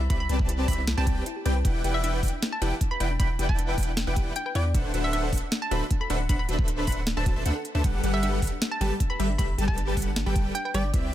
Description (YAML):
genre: future bass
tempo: 155 BPM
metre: 4/4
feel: half-time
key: unclear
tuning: A4 = 441 Hz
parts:
  - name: hollow square pluck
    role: melody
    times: 0.0-11.0 s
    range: D5 to B5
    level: -34 LUFS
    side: equal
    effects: chorus, sidechain pumping, tape echo
  - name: thumb-piano-like synth pluck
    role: arpeggios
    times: 0.0-11.0 s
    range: D4 to G5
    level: -39 LUFS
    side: left 3 dB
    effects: chorus, sidechain pumping, tape echo
  - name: long sustained 808-style bass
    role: bass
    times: 0.0-11.1 s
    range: D1 to E2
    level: -28 LUFS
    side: equal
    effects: sidechain pumping
  - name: airy dreamy lead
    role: arpeggios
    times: 0.1-11.1 s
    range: E5 to B5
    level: -39 LUFS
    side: left 1 dB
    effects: chorus, sidechain pumping, tape echo
  - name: dense compressed supersaw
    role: riff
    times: 0.1-11.1 s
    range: G3 to B5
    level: -30 LUFS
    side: equal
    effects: sidechain pumping
  - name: electronic kick drum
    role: drums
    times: 0.1-11.0 s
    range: none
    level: -26 LUFS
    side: equal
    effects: none
  - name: trap drum kit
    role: drums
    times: 0.1-11.0 s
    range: hi-hat, snare drum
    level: -32 LUFS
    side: equal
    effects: overdrive
room: little or no reverb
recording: none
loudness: -24 LUFS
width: side -12 dB against mid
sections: 0.0-11.1 A section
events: none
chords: 0.0 Cmaj7; 1.6 Em7; 4.7 D13; 7.8 Gmaj7